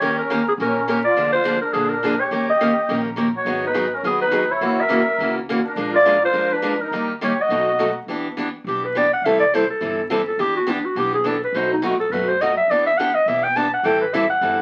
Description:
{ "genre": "acoustic string swing (jazz manouche)", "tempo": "208 BPM", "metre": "4/4", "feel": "swing 57% on 8ths", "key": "E minor from 8.1 s", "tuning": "A4 = 440 Hz", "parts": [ { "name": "growling clarinet", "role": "melody", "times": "0.0-14.6 s", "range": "D4 to A5", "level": "-21 LUFS", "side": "equal", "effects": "none" }, { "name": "musette accordion", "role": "second line", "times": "0.0-8.0 s", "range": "B3 to A#4", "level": "-29 LUFS", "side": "equal", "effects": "none" }, { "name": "picked steel-string acoustic guitar", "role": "accompaniment", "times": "0.0-14.6 s", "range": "B2 to A#4", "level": "-25 LUFS", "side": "equal", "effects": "none" }, { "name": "upright bass", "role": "bass", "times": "0.0-14.6 s", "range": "F#1 to A#2", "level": "-41 LUFS", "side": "equal", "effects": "none" } ], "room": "moderate studio ambience, RT60 0.5 s", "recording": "very old 78 rpm record, vinyl crackle", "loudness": "-20 LUFS", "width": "mono", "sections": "0.0-8.1 A section; 8.1-14.6 B section", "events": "clarinet solo 8.1-14.6", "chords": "0.0 D#7; 1.2 A#7/D; 2.3 D#7; 3.5 G#m7; 4.6 F#7; 5.8 A#7; 6.9 D#; 7.5 B7; 8.1 Em7; 9.2 C6; 10.4 Em7; 11.5 B7; 12.7 Em7; 13.8 Am7", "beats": "| 0.01 0.30 0.59 0.87 | 1.16 1.45 1.74 2.02 | 2.31 2.60 2.88 3.17 | 3.46 3.75 4.04 4.32 | 4.61 4.90 5.19 5.47 | 5.76 6.05 6.34 6.63 | 6.92 7.20 7.49 7.78 | 8.07 8.36 8.65 8.94 | 9.22 9.51 9.80 10.09 | 10.38 10.67 10.96 11.24 | 11.53 11.82 12.11 12.40 | 12.69 12.97 13.26 13.55 | 13.84 14.13 14.42" }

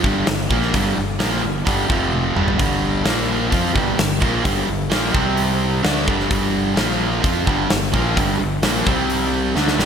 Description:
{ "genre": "hard rock", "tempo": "129 BPM", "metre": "4/4", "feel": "straight", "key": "G minor", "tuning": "A4 = 438 Hz", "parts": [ { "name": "overdriven semi-hollow guitar", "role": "riff", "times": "0.0-9.9 s", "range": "F2 to F4", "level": "-22 LUFS", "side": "right 9 dB", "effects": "wide subtle chorus" }, { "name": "sludgy distorted guitar", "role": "riff", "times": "0.0-9.9 s", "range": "F2 to F4", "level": "-23 LUFS", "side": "left 9 dB", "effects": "overdrive" }, { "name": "fuzz fingered electric bass", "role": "bass", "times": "0.0-9.9 s", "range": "F1 to F2", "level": "-25 LUFS", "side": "equal", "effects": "overdrive" }, { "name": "huge arena drum kit", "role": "drums", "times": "0.0-9.9 s", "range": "hi-hat, kick drum, snare drum, toms", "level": "-21 LUFS", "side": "equal", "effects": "gated reverb" } ], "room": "moderate lush hall reverb, RT60 1.8 s, small room reverb", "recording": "bright 1980s-style digital production", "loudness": "-16 LUFS", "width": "side -7 dB against mid", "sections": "0.0-9.9 A section", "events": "drum fill 2.1-2.6, 9.6", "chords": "0.0 Gm; 1.9 F5; 2.4 G5; 3.1 Bb5; 3.5 Gm; 5.2 C5; 5.8 G5; 6.8 Bb5; 7.2 Gm; 8.9 C5", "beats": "0.28 | 0.74 1.21 1.67 2.13 | 2.60 3.06 3.52 3.99 | 4.45 4.92 5.38 5.85 | 6.31 6.78 7.24 7.71 | 8.17 8.63 9.10 9.57" }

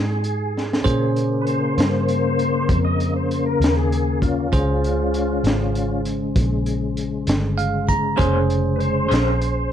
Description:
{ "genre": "slow blues", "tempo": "65 BPM (dotted quarters)", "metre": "12/8", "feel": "straight", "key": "unclear", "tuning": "A4 = 444 Hz", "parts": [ { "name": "bell-like tine electric piano", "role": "accompaniment", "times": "0.0-9.7 s", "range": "Db4 to Bb5", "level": "-26 LUFS", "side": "right 4 dB", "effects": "none" }, { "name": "tonewheel organ", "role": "sustained chords", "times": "0.0-9.7 s", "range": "Db3 to Eb5", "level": "-23 LUFS", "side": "left 3 dB", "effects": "slow rotary speaker, chorus vibrato" }, { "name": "vintage muted fingered electric bass", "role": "bass", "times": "0.0-9.7 s", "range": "F1 to Bb2", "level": "-23 LUFS", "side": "equal", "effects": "none" }, { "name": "crunchy breakbeat drum kit", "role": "drums", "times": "0.2-9.6 s", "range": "hi-hat, kick drum, snare drum", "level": "-23 LUFS", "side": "equal", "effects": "none" }, { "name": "electric guitar through a small old amp", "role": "accompaniment", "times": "8.2-9.3 s", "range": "Bb3 to C5", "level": "-25 LUFS", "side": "left 3 dB", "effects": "tremolo" } ], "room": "light reverb", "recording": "dark, warm production", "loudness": "-18 LUFS", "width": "side -10 dB against mid", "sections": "0.0-9.7 A section", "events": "tonewheel organ solo 0.0-9.7; drum fill 0.5-0.8; tine electric piano fill 7.3-8.2", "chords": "0.0 Fm9 (rootless); 0.8 Bbm9", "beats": "| 0.85 1.77 2.68 3.60 | 4.52 5.44 6.36 7.27 | 8.19 9.11" }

